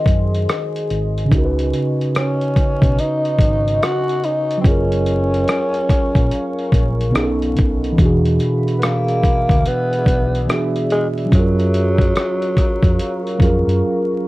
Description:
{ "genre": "lo-fi hip hop", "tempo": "72 BPM", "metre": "4/4", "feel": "swing 64% on 16ths", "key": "F# major", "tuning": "A4 = 441 Hz", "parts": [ { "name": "growling tenor saxophone", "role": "melody", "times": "0.0-13.8 s", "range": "F#3 to F#4", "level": "-20 LUFS", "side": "equal", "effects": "plate reverb" }, { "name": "mellow tine electric piano", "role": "accompaniment", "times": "0.0-14.3 s", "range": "B2 to B#4", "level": "-20 LUFS", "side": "right 1 dB", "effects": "slow stereo tremolo" }, { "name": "deep dark ambient pad", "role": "sustained chords", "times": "0.0-14.3 s", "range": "G#4 to C#6", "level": "-28 LUFS", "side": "left 2 dB", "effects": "chorus, built-in reverb, plate reverb" }, { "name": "hollow-body short-scale fingered electric bass", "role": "bass", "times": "0.1-13.8 s", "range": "F#1 to F#2", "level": "-19 LUFS", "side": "equal", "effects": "none" }, { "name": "dusty soul sampler-style drum kit", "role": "drums", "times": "0.1-13.8 s", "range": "hi-hat, kick drum, rim click", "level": "-17 LUFS", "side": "equal", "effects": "none" } ], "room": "light reverb", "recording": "worn, warbling old tape, cassette tape, vinyl crackle, warbly pitch drift", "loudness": "-15 LUFS", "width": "side -18 dB against mid", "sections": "0.0-14.3 A section", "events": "break 13.8-14.3", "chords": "0.0 G#7; 1.3 C#9sus4; 4.6 F#maj7; 7.1 B7; 8.0 E7; 11.3 F#maj7", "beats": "0.48 | 1.31 2.14 2.98 3.81 | 4.64 5.48 6.31 7.14 | 7.98 8.81 9.64 10.48 | 11.31 12.14 12.98 13.81" }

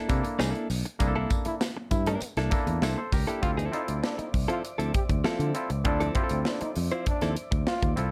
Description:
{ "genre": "funk", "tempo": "99 BPM", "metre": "4/4", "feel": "straight", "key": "unclear", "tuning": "A4 = 439 Hz", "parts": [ { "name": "direct-recorded clean electric guitar", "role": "accompaniment", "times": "0.0-7.9 s", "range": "F3 to C5", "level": "-34 LUFS", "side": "equal", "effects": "none" }, { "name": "overdriven clav", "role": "stabs", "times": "0.1-8.1 s", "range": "Bb3 to E5", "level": "-35 LUFS", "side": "equal", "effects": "none" }, { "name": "overdriven fingered electric bass", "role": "bass", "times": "0.1-8.1 s", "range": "B1 to D3", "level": "-32 LUFS", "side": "equal", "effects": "none" }, { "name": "crisp fusion drum kit", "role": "drums", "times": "0.1-8.1 s", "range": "hi-hat, kick drum, snare drum", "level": "-32 LUFS", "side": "equal", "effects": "none" }, { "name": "tambourine", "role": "percussion", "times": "0.1-3.3 s", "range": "none", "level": "-46 LUFS", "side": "equal", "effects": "none" }, { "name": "breathy trombone", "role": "second line", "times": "1.5-7.9 s", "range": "C4 to G4", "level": "-36 LUFS", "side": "equal", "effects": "none" }, { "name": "tonewheel organ", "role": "sustained chords", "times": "3.4-8.1 s", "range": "C5 to D6", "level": "-44 LUFS", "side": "equal", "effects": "slow rotary speaker" } ], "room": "light reverb", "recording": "dark, warm production", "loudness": "-28 LUFS", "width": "mono", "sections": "0.0-3.4 A section; 3.4-8.1 B section", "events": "band accent 1.0-3.4", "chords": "0.0 C13; 3.4 Dm9", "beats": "0.40 | 1.00 1.61 2.21 2.82 | 3.42 4.03 4.64 5.24 | 5.85 6.46 7.06 7.67" }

